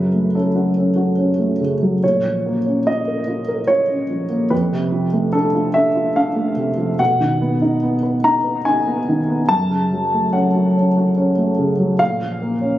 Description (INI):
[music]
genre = neoclassical minimalist piano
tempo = 72 BPM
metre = 3/4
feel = rubato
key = unclear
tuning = A4 = 438 Hz
[part]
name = dark upright piano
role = solo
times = 0.0-12.8 s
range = F2 to Bb5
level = -16 LUFS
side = equal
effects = tape echo
[sound]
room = light reverb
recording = recorded on a phone in the room, club reverb, compression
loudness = -16 LUFS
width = side -14 dB against mid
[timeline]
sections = 0.0-12.8 A section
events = none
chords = 0.0 Gbm; 2.0 Bbm; 4.5 F6; 7.0 B; 9.5 Gbm; 12.0 Bbm